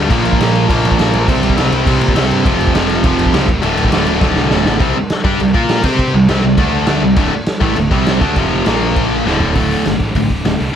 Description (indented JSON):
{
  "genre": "punk rock",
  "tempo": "203 BPM",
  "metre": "4/4",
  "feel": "straight",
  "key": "D minor",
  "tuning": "A4 = 436 Hz",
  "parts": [
    { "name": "tight distorted guitar", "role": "riff", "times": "0.0-10.8 s", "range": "D2 to C5", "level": "-17 LUFS", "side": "left 7 dB", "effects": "distortion" },
    { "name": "fuzz picked electric bass", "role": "bass", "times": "0.0-10.7 s", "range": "D1 to C3", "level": "-19 LUFS", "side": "equal", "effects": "overdrive" },
    { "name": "distorted electric guitar", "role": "riff", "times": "0.1-10.6 s", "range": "D2 to C5", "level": "-19 LUFS", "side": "right 13 dB", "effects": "distortion" },
    { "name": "scooped high-gain guitar", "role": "riff", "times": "0.1-10.8 s", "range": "D2 to C5", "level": "-20 LUFS", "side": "right 1 dB", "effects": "distortion" },
    { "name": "raw garage drum kit", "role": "drums", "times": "0.1-10.7 s", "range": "crash cymbal, hi-hat, kick drum, snare drum, toms", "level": "-16 LUFS", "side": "equal", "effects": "none" }
  ],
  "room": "studio ambience",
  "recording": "none",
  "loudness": "-11 LUFS",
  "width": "side -9 dB against mid",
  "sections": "0.0-4.8 A section; 4.8-9.5 B section; 9.5-10.8 C section",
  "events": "drum fill 4.2-4.8, 9.3",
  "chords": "0.1 Bb5; 1.3 C5; 2.5 F5; 3.5 D5; 4.8 C5; 5.6 Bb5; 5.8 C5; 6.6 D5; 6.9 C5; 7.2 D5; 7.9 C5; 8.2 D5; 8.4 F5; 8.7 Bb5; 9.3 D5",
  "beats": "| 0.10 0.40 0.69 0.98 | 1.28 1.57 1.86 2.16 | 2.45 2.75 3.04 3.34 | 3.63 3.93 4.22 4.52 | 4.81 5.11 5.40 5.70 | 5.99 6.29 6.59 6.88 | 7.18 7.47 7.77 8.06 | 8.36 8.66 8.95 9.25 | 9.55 9.85 10.14 10.44 | 10.74"
}